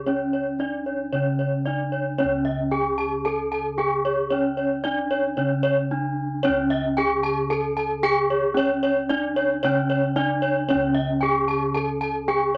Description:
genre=Balinese gamelan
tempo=113 BPM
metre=4/4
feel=straight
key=unclear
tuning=A4 = 440 Hz
part: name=gamelan-type bronze metallophone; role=melody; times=0.0-12.6 s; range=C#4 to A4-40c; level=-27 LUFS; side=equal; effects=none
part: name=gamelan-type bossed gongs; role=bass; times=0.0-12.6 s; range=C#2 to D4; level=-30 LUFS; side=equal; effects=none
part: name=gamelan-type bronze metallophone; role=arpeggios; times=0.1-12.6 s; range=C#5 to A5-40c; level=-27 LUFS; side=equal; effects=none
room=wet club reverb, RT60 0.6 s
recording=none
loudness=-23 LUFS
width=mono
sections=0.0-10.7 A section; 10.7-12.6 A section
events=none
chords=none

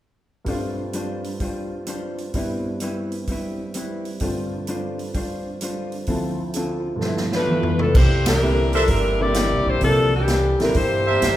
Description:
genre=jazz, big band swing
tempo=128 BPM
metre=4/4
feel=swing 67% on 8ths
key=C mixolydian from 8.0 s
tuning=A4 = 440 Hz
part: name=warm upright piano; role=accompaniment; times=0.4-10.7 s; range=D2 to E5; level=-28 LUFS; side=equal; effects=none
part: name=vintage hollow-body jazz guitar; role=accompaniment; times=0.5-11.4 s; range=G2 to C5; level=-29 LUFS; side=left 1 dB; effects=none
part: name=swinging big-band drum kit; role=drums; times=0.5-11.4 s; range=crash cymbal, hi-hat, kick drum, ride cymbal, snare drum, toms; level=-23 LUFS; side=equal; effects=none
part: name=mellow saxophone section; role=melody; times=7.3-11.4 s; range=E3 to D5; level=-20 LUFS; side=left 1 dB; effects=none
part: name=upright bass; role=bass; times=7.9-11.4 s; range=G1 to G2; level=-22 LUFS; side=equal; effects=none
part: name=warm trumpet section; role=stabs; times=8.7-11.4 s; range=D4 to E5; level=-24 LUFS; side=right 4 dB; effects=none
room=wet recital hall reverb, RT60 1.5 s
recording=recorded in a church or concert hall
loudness=-20 LUFS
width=side -13 dB against mid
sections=0.5-8.0 A section; 8.0-11.4 B section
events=drum fill 7.0-8.0; band accent 8.2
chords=0.5 G7sus4; 2.3 Cmaj7/G; 4.2 G7sus4; 6.1 Dm7; 7.0 G13; 8.0 C9

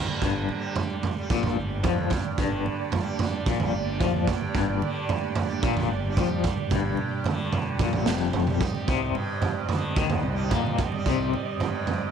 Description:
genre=psychedelic rock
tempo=111 BPM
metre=4/4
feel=straight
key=G minor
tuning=A4 = 440 Hz
part: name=muted studio string section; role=sustained chords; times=0.0-12.1 s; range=Bb3 to Eb5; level=-33 LUFS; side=right 11 dB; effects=none
part: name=tanpura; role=drone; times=0.0-12.1 s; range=G2 to G3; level=-32 LUFS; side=equal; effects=none
part: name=congas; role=percussion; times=0.1-11.7 s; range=none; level=-37 LUFS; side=right 7 dB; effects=none
part: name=twangy electric guitar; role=riff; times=0.2-11.3 s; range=F2 to Bb3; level=-29 LUFS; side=left 12 dB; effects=tremolo
part: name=fuzz fingered electric bass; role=bass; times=0.2-11.3 s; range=F1 to Bb2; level=-31 LUFS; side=equal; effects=overdrive
part: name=raw garage drum kit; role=drums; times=0.2-12.0 s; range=kick drum, snare drum, toms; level=-28 LUFS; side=right 3 dB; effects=none
room=light reverb, small room ambience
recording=1960s-style stereo with parts hard left and right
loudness=-24 LUFS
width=side -7 dB against mid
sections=0.0-12.1 A section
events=none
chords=0.0 Gm; 8.6 Cmadd9

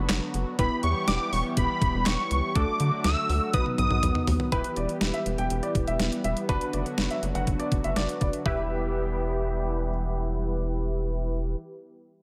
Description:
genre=synth-pop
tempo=122 BPM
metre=4/4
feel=straight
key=E minor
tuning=A4 = 439 Hz
part: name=unison lead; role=melody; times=0.0-4.2 s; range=B5 to E6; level=-31 LUFS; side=equal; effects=none
part: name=funky polysynth comp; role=accompaniment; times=0.0-11.6 s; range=A3 to B4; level=-35 LUFS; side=equal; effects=chorus, low-pass filter
part: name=lush unison pad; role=sustained chords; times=0.0-11.6 s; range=D3 to G4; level=-37 LUFS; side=equal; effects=chorus, phaser, low-pass filter
part: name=rubbery square bass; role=bass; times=0.0-11.6 s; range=E1 to D3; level=-31 LUFS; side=equal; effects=none
part: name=detuned 8-bit digital drum machine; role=drums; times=0.1-8.6 s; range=handclaps, hi-hat, kick drum, snare drum, toms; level=-31 LUFS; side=equal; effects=overdrive
part: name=warm concert grand piano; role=second line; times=4.5-9.9 s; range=B4 to G5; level=-35 LUFS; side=equal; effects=tape echo
room=moderate lush hall reverb, RT60 1.8 s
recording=none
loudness=-27 LUFS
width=mono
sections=0.0-4.5 A section; 4.5-8.5 B section; 8.5-12.2 C section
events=drum fill 3.5-4.5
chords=0.0 Bm/F#; 0.6 Em; 2.6 D; 3.5 B; 4.5 Em; 6.5 Bm/F#; 8.5 Em

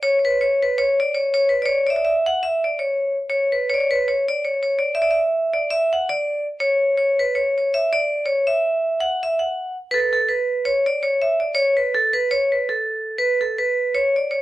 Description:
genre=balkan folk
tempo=328 BPM (eighths)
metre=9/8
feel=straight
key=unclear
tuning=A4 = 440 Hz
part: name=vibraphone with hard mallets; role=solo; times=0.0-14.4 s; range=A4 to F#5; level=-18 LUFS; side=equal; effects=none
room=light reverb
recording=none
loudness=-18 LUFS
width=side -15 dB against mid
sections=0.0-9.9 A section; 9.9-14.4 B section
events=none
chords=none

